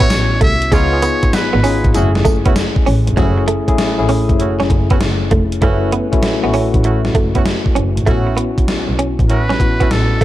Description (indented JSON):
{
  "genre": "R&B, new jack swing",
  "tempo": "98 BPM",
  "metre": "4/4",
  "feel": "swing 66% on 16ths",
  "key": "F# dorian",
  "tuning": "A4 = 439 Hz",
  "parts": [
    { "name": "trumpet with metal mute", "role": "melody", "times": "0.0-1.9, 9.3-10.2 s", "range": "A4 to E5", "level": "-20 LUFS", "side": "equal", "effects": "tape echo" },
    { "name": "tine electric piano", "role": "accompaniment", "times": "0.0-10.2 s", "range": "A3 to B4", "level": "-19 LUFS", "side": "left 3 dB", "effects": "medium stereo tremolo" },
    { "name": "direct-recorded clean electric guitar", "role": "riff", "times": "0.0-10.2 s", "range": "F#3 to C#4", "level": "-21 LUFS", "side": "right 4 dB", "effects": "ensemble chorus" },
    { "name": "warm horn section", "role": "stabs", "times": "0.0-9.9 s", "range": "A3 to F#4", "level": "-25 LUFS", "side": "right 5 dB", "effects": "none" },
    { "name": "gated 80s digital drum machine", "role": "drums", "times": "0.0-10.2 s", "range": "hi-hat, kick drum, snare drum, tambourine", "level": "-16 LUFS", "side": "equal", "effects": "gated reverb, gated reverb snare" },
    { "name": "rich double bass", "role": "bass", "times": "0.1-10.2 s", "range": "E#1 to C#2", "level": "-17 LUFS", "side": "equal", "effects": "none" }
  ],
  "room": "little or no reverb",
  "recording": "dark, warm production",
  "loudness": "-12 LUFS",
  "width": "side -14 dB against mid",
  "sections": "0.0-3.2 A section; 3.2-8.1 B section; 8.1-10.2 C section",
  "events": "none",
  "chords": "0.0 A6; 0.7 C#9; 1.9 F#m7; 8.1 A6"
}